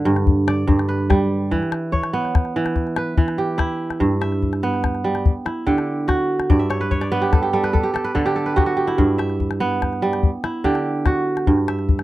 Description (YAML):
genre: west african traditional, West African string and xylophone music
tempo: 96 BPM (dotted quarters)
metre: 12/8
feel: straight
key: G lydian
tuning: A4 = 440 Hz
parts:
  - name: kora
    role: arpeggios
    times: 0.0-12.0 s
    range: G2 to E5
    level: -19 LUFS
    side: right 2 dB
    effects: none
  - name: calabash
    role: percussion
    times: 0.1-12.0 s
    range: none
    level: -19 LUFS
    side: left 3 dB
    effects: none
room: light reverb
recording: dry, close 1970s-style studio recording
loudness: -18 LUFS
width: side -15 dB against mid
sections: 0.0-4.0 A section; 4.0-12.0 B section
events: kora fill 6.5-9.0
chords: 0.0 G; 1.5 Em; 4.0 G; 5.3 D; 6.5 G; 7.7 D; 9.0 G; 10.2 D; 11.5 N.C.